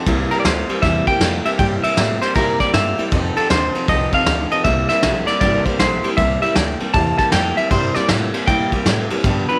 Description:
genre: rockabilly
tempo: 157 BPM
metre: 4/4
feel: swing 64% on 8ths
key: C mixolydian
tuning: A4 = 439 Hz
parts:
  - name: picked steel-string acoustic guitar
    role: accompaniment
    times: 0.0-9.6 s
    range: G2 to A4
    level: -26 LUFS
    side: equal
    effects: none
  - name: electric guitar through a small old amp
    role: riff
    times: 0.0-9.6 s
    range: F2 to A3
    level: -28 LUFS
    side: equal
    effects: none
  - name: upright bass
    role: bass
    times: 0.1-9.5 s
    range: G1 to Bb2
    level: -26 LUFS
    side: equal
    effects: none
  - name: vintage brush drum kit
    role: drums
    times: 0.1-9.6 s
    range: kick drum, ride cymbal, snare drum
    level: -22 LUFS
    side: equal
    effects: none
  - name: semi-hollow electric guitar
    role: melody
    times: 0.3-9.6 s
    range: A4 to A5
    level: -22 LUFS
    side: equal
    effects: tape echo
room: light reverb, studio reverb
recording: faint mains hum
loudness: -17 LUFS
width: mono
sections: 0.0-9.6 A section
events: none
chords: 0.1 C7; 3.1 F7; 4.6 C7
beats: | 0.07 0.45 0.83 1.21 | 1.59 1.97 2.36 2.74 | 3.12 3.50 3.88 4.27 | 4.65 5.03 5.41 5.80 | 6.18 6.56 6.94 7.33 | 7.71 8.09 8.48 8.86 | 9.24

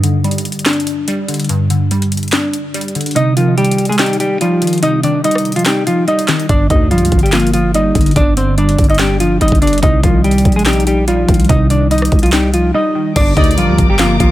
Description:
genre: hip hop, trap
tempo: 144 BPM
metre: 4/4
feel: half-time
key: G minor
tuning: A4 = 440 Hz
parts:
  - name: glassy wavetable pluck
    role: accompaniment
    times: 0.0-14.3 s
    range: G2 to Eb4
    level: -16 LUFS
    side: equal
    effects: chorus
  - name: trap drum kit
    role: drums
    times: 0.0-14.3 s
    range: crash cymbal, handclaps, hi-hat, kick drum, rim click, snare drum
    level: -16 LUFS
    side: equal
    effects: none
  - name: semi-hollow electric guitar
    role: melody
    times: 3.2-14.3 s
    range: F3 to Eb5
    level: -15 LUFS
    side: equal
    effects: tape echo
  - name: growling 808-style bass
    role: bass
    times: 6.5-14.3 s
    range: G1 to D2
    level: -15 LUFS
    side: equal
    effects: none
  - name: dark studio string section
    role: sustained chords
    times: 13.2-14.3 s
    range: G4 to D6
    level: -22 LUFS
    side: left 2 dB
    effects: none
  - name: rich studio violin section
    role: second line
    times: 13.4-13.6 s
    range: D5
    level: -23 LUFS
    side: right 1 dB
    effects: tape echo
room: digital ambience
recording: none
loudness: -11 LUFS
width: side -15 dB against mid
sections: 0.0-13.2 A section; 13.2-14.3 B section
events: break 0.0-6.5, 12.7-13.2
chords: 0.0 G5; 3.2 Cm; 6.5 Gm; 9.8 Cm; 13.2 Gm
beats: 0.24 0.66 1.08 | 1.49 1.91 2.33 2.74 | 3.16 3.58 3.99 4.41 | 4.83 5.24 5.66 6.08 | 6.49 6.91 7.33 7.74 | 8.16 8.58 8.99 9.41 | 9.83 10.24 10.66 11.08 | 11.49 11.91 12.33 12.74 | 13.16 13.58 13.99

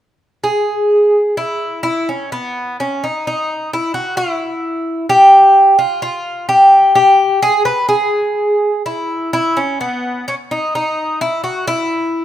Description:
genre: fado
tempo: 64 BPM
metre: 2/4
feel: rubato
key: unclear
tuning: A4 = 440 Hz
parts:
  - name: Irish bouzouki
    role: solo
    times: 0.4-12.2 s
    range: B3 to B4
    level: -12 LUFS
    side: equal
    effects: none
room: moderate recital hall reverb, RT60 1.7 s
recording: minimal, uncompressed stereo recording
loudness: -12 LUFS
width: side -12 dB against mid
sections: 0.0-1.8 A section; 1.8-12.2 B section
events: none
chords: none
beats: 0.88 | 1.82 2.78 | 3.72 4.63 | 5.56 6.49 | 7.42 8.37 | 9.33 10.28 | 11.20 12.11

